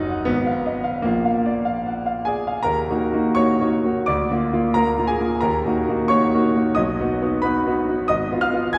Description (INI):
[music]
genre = classical, romantic character piece for solo piano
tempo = 72-91 BPM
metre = 2/4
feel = rubato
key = Eb minor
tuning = A4 = 440 Hz
[part]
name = clear grand piano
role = solo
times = 0.0-8.8 s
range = Gb1 to Ab6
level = -21 LUFS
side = equal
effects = none
[sound]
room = wet church reverb, RT60 2.9 s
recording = recorded in a church or concert hall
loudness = -21 LUFS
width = mono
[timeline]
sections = 0.0-2.7 A section; 2.7-8.8 B section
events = none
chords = 0.3 Fm7b5/Ab; 1.0 Bb; 2.7 Ebm; 4.1 Bb/D; 5.4 Ebm; 6.8 B; 8.1 Fdim/Ab